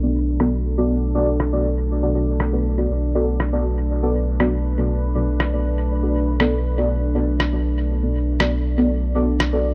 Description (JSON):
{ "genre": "dub techno", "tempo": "120 BPM", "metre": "4/4", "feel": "straight", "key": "B minor", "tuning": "A4 = 441 Hz", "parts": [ { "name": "deep dark ambient pad", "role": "sustained chords", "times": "0.0-9.7 s", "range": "A3 to D5", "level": "-29 LUFS", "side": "equal", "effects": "chorus, built-in reverb" }, { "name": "deep mellow chord stab", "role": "stabs", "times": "0.0-9.7 s", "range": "B3 to D5", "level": "-25 LUFS", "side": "equal", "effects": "chorus, phaser, dub echo" }, { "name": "warm sub bass", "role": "bass", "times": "0.0-9.7 s", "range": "B1", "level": "-24 LUFS", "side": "equal", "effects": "none" }, { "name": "electronic rim click", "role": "drums", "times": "0.4-9.5 s", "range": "none", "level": "-26 LUFS", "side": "equal", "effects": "low-pass filter on snare, dub echo" } ], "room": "little or no reverb", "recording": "dry, gritty hardware recording, low-pass filter", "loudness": "-21 LUFS", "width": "mono", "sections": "0.0-9.7 A section", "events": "filter sweep on synth stab 0.0-9.7; filter sweep 0.0-9.7", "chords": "0.0 Bm7" }